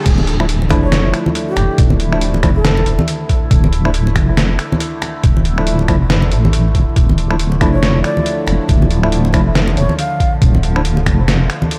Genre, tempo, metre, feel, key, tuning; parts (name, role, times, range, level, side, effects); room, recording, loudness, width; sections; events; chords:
deep dubstep; 139 BPM; 4/4; swing 59% on 16ths, half-time; D minor; A4 = 441 Hz
overtone-sweeping drone; sustained chords; 0.0-11.8 s; D3 to E4; -27 LUFS; equal; chorus, built-in reverb
deep soft wobble bass; bass; 0.1-11.5 s; D1 to A1; -18 LUFS; equal; chorus
electronic kick drum; drums; 0.1-11.2 s; -16 LUFS; equal; studio reverb
trip hop sampler-style drum kit; drums; 0.1-11.8 s; crash cymbal, finger snaps, hi-hat, snare drum; -22 LUFS; equal; studio reverb
congas; percussion; 0.1-11.7 s; -22 LUFS; equal
percussive organ stab; stabs; 0.4-10.8 s; F3 to E4; -23 LUFS; equal; analog chorus, dub echo
mellow shakuhachi; melody; 0.8-3.0, 7.7-10.3 s; G4 to F5; -26 LUFS; equal; dub echo
digital ambience; vinyl crackle; -14 LUFS; mono
0.1-11.8 A section
drop 0.1-11.8
0.1 Dmadd9